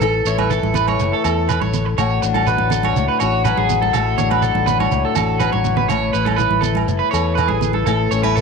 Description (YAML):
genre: highlife guitar band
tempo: 122 BPM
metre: 4/4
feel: straight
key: A major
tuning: A4 = 440 Hz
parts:
  - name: picked old ladder-braced acoustic guitar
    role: accompaniment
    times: 0.0-8.4 s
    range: A2 to A4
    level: -21 LUFS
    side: left 13 dB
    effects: none
  - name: electric guitar at the edge of break-up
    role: arpeggios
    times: 0.0-8.4 s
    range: G#4 to C#5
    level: -20 LUFS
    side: right 9 dB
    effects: lush chorus, tape echo
  - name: fingered electric bass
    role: bass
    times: 0.0-8.4 s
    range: F#1 to E2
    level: -21 LUFS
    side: left 1 dB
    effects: none
  - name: agogo bells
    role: percussion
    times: 0.0-8.4 s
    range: none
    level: -28 LUFS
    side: right 14 dB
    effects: none
  - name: shekere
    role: percussion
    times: 0.0-8.4 s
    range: none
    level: -26 LUFS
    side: right 6 dB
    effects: none
  - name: congas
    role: percussion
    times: 0.4-8.3 s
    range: none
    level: -26 LUFS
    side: right 9 dB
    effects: none
room: moderate echo chamber reverb, RT60 1.5 s, small room ambience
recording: 1960s-style stereo with parts hard left and right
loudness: -15 LUFS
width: side -5 dB against mid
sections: 0.0-8.4 A section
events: drum fill 5.4-5.9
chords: 0.0 Aadd9; 2.0 D/A; 5.9 Aadd9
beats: | 0.02 0.51 1.00 1.49 | 1.98 2.47 2.96 3.45 | 3.94 4.43 4.92 5.41 | 5.90 6.39 6.88 7.37 | 7.86 8.35